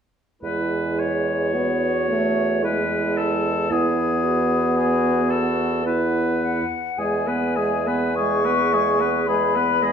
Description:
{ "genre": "classical, slow romantic movement for wind quintet", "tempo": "50-57 BPM", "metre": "3/4", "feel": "rubato", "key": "E major", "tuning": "A4 = 441 Hz", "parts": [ { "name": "clear oboe", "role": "second line", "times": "0.4-9.9 s", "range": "G#4 to C#5", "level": "-25 LUFS", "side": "left 4 dB", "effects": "none" }, { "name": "clear French horn", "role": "accompaniment", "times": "0.4-9.9 s", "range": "G#3 to B3", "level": "-25 LUFS", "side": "equal", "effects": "none" }, { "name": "mellow clarinet", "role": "accompaniment", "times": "0.4-9.9 s", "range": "E4 to D#5", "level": "-27 LUFS", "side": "right 7 dB", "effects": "none" }, { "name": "mellow bassoon", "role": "bass", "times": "0.4-9.9 s", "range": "E2", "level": "-25 LUFS", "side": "right 3 dB", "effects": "none" }, { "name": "silver concert flute", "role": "melody", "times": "6.4-9.9 s", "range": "F#5 to C#6", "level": "-23 LUFS", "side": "left 7 dB", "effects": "none" } ], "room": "wet recital hall reverb, RT60 1.4 s", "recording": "minimal, uncompressed stereo recording", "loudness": "-19 LUFS", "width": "side -7 dB against mid", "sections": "0.4-7.0 A section; 7.0-9.9 B section", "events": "none", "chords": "0.4 E" }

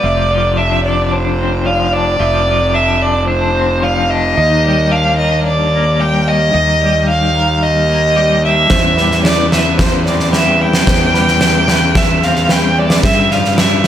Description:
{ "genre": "post-rock", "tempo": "111 BPM", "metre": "4/4", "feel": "straight", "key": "F lydian", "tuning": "A4 = 440 Hz", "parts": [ { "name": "dark violin", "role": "melody", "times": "0.0-13.9 s", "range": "C5 to G5", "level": "-14 LUFS", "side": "right 1 dB", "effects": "digital delay" }, { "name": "felt-muted upright piano", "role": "arpeggios", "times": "0.0-13.8 s", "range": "B4 to E5", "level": "-24 LUFS", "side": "right 4 dB", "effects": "digital delay" }, { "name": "twelve-string electric guitar", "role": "arpeggios", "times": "0.0-13.9 s", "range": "E2 to B4", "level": "-20 LUFS", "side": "left 3 dB", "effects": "tremolo, digital delay" }, { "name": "fuzz fingered electric bass", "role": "bass", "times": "0.0-13.9 s", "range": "F1 to G2", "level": "-16 LUFS", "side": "equal", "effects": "overdrive" }, { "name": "huge arena drum kit", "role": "drums", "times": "8.7-13.9 s", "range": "kick drum, snare drum", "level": "-14 LUFS", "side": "equal", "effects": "none" } ], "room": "moderate large studio reverb, RT60 0.8 s, small room reverb", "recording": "none", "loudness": "-10 LUFS", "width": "side -10 dB against mid", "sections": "0.0-13.9 A section", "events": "none", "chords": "0.0 F6; 4.4 Ebmaj7; 8.7 Cmaj7/E; 13.0 G6" }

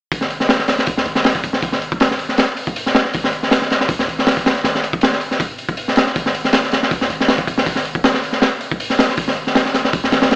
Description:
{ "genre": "drum and bass, jungle", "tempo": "159 BPM", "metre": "4/4", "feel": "swing 54% on 16ths", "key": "unclear", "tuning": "A4 = 440 Hz", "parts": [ { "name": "warm 808-style bass", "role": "bass", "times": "0.1-10.4 s", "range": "G#1 to C#2", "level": "-33 LUFS", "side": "equal", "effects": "none" }, { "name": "crunchy breakbeat drum kit", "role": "drums", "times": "0.1-10.4 s", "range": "hi-hat, kick drum, snare drum", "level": "-14 LUFS", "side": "equal", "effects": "none" } ], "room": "little or no reverb", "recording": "AM radio sound", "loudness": "-15 LUFS", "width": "side -31 dB against mid", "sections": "0.1-10.4 A section", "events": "none", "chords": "none" }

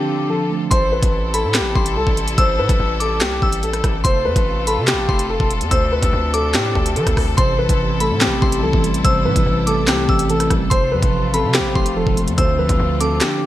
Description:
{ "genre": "hip hop, drill", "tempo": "144 BPM", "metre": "4/4", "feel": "half-time", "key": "A minor", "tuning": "A4 = 440 Hz", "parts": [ { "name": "dark grand piano", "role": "melody", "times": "0.0-13.5 s", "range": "G4 to C5", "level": "-21 LUFS", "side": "left 1 dB", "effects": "digital delay" }, { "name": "glassy synth bell", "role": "second line", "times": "0.0-13.5 s", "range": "B5 to E6", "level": "-25 LUFS", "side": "left 2 dB", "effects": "chorus, digital delay" }, { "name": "mellow tine electric piano", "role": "accompaniment", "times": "0.0-0.7, 7.4-13.5 s", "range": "C3 to C5", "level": "-21 LUFS", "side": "right 1 dB", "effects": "slow stereo tremolo" }, { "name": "rich studio string section", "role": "sustained chords", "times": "0.0-13.5 s", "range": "C3 to A4", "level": "-27 LUFS", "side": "left 1 dB", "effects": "none" }, { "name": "distorted 808-style bass", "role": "bass", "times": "0.7-13.2 s", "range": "E1 to F3", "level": "-22 LUFS", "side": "equal", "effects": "distortion" }, { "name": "drill drum kit", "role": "drums", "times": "0.7-13.3 s", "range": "handclaps, hi-hat, kick drum, rim click, snare drum", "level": "-19 LUFS", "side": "equal", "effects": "gated reverb" } ], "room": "light reverb", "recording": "bright 1980s-style digital production", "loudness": "-15 LUFS", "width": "side -14 dB against mid", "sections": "0.7-13.5 A section", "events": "break 0.0-0.7; kick muted 13.2", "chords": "0.0 Dm7; 0.7 Am7; 4.0 F; 5.7 Dm7; 7.4 Am7; 10.7 F; 12.4 Dm7" }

